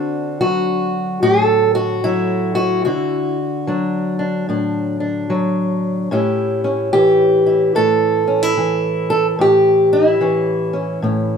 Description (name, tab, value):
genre	acoustic country blues, solo or duo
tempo	74 BPM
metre	4/4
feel	swing 63% on 8ths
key	A mixolydian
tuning	A4 = 439 Hz
part	fingerpicked steel-string acoustic guitar	solo	0.0-11.4 s	A2 to A4	-14 LUFS	equal	none
room	moderate stone room reverb, RT60 1.0 s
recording	band playing live in one room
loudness	-14 LUFS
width	side -6 dB against mid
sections	0.0-11.4 A section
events	none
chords	0.0 D7; 6.1 A7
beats	0.42 1.23 2.04 | 2.86 3.67 4.49 5.30 | 6.12 6.94 7.75 8.57 | 9.39 10.21 11.02